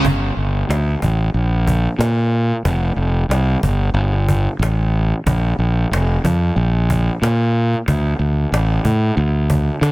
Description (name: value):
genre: hard rock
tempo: 92 BPM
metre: 4/4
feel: straight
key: unclear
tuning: A4 = 438 Hz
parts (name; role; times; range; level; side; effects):
- fuzz fingered electric bass; bass; 0.0-9.9 s; F1 to D3; -16 LUFS; equal; overdrive
- cajon; drums; 0.0-9.9 s; none; -24 LUFS; equal; none
room: small room reverb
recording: none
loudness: -15 LUFS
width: side -20 dB against mid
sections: 0.0-9.9 A section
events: none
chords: none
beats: | 0.04 0.69 1.34 2.00 | 2.65 3.30 3.95 4.61 | 5.26 5.91 6.56 7.21 | 7.87 8.52 9.17 9.82